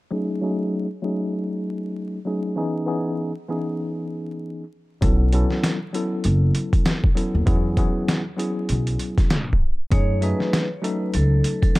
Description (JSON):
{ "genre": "hip hop, boom-bap hip-hop", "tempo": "98 BPM", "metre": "4/4", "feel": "swing 58% on 16ths", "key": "F# dorian", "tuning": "A4 = 443 Hz", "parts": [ { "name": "mellow tine electric piano", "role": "accompaniment", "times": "0.1-11.8 s", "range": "E3 to A4", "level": "-25 LUFS", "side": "left 1 dB", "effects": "medium stereo tremolo, cassette tape, high-pass filter, low-pass filter" }, { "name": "upright bass", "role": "bass", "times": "5.0-11.4 s", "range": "F#1 to F#2", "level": "-20 LUFS", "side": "equal", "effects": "none" }, { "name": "boom bap sampler-style drum kit", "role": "drums", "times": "5.0-11.8 s", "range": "hi-hat, kick drum, snare drum", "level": "-21 LUFS", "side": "equal", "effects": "overdrive" }, { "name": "vibraphone with medium hard mallets", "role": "melody", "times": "9.9-11.8 s", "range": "A4 to C#5", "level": "-29 LUFS", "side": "equal", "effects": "high-pass filter, low-pass filter, ping-pong delay" } ], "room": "small room ambience", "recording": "dark, warm production, vinyl crackle, tape stop", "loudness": "-20 LUFS", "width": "side -20 dB against mid", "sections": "0.1-9.9 A section; 9.9-11.8 B section", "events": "filter sweep on tine electric piano 0.1-9.9; tape stop 9.3-9.9", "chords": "0.1 F#m69; 2.6 C#m9; 5.0 B7sus4; 7.5 E6; 9.9 F#m69", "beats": "| 0.12 0.73 1.35 1.96 | 2.57 3.18 3.79 4.41 | 5.02 5.63 6.24 6.86 | 7.47 8.08 8.69 9.31 | 9.92 10.53 11.14 11.76" }